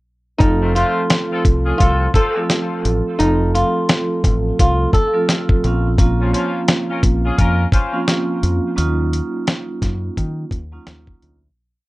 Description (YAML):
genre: hip hop, boom-bap hip-hop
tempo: 86 BPM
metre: 4/4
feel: swing 59% on 16ths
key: unclear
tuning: A4 = 440 Hz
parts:
  - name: flamenco guitar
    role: melody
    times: 0.4-5.9 s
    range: Eb4 to A4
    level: -20 LUFS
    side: equal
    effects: high-pass filter, low-pass filter
  - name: vibraphone with medium mallets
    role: accompaniment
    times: 0.4-11.4 s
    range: F3 to A4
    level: -21 LUFS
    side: right 2 dB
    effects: cassette tape, high-pass filter, low-pass filter
  - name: deep dub fingered electric bass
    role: bass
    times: 0.4-11.5 s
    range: F1 to Eb3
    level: -19 LUFS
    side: equal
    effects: none
  - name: dusty soul sampler-style drum kit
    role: drums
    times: 0.4-11.4 s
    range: hi-hat, kick drum, snare drum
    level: -16 LUFS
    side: equal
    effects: none
  - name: warm horn section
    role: stabs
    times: 0.6-8.0 s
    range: F3 to C5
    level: -25 LUFS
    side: left 2 dB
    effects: high-pass filter, low-pass filter, ping-pong delay
room: light reverb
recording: worn, warbling old tape, cassette tape, warbly pitch drift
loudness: -15 LUFS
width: side -20 dB against mid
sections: 0.4-11.6 hook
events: fade-out 8.8-11.6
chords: 0.4 F; 5.6 Bbmadd9; 8.8 Ebm7